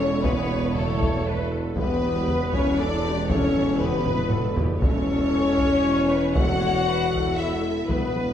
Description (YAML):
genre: cinematic, epic orchestral film score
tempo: 118 BPM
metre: 3/4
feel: straight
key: unclear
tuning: A4 = 441 Hz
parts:
  - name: warm symphonic violin section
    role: melody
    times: 0.0-8.3 s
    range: A4 to F#5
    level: -35 LUFS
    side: left 2 dB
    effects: none
  - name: warm symphonic violin section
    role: second line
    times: 0.0-8.3 s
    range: A4 to F#5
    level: -31 LUFS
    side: left 2 dB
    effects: none
  - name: dark studio viola section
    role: accompaniment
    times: 0.0-8.3 s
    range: G4 to C#5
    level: -32 LUFS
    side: right 1 dB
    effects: none
  - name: warm French horn section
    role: sustained chords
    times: 0.0-8.3 s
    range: A3 to F#4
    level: -24 LUFS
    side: left 3 dB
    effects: none
  - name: dark symphonic cello section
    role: bass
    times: 0.0-8.3 s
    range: E2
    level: -33 LUFS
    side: right 2 dB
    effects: none
  - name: warm symphonic double bass section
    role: bass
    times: 0.0-8.3 s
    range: E1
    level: -30 LUFS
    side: right 3 dB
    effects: none
  - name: warm tuba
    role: bass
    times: 0.0-8.3 s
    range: E1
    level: -31 LUFS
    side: right 2 dB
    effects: none
  - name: taiko ensemble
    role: drums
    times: 0.2-8.3 s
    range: none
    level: -27 LUFS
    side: equal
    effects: none
room: wet recital hall reverb, RT60 1.8 s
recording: recorded in a church or concert hall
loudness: -20 LUFS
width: side -10 dB against mid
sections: 0.0-8.3 A section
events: drum fill 4.1-4.8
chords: 0.0 A/E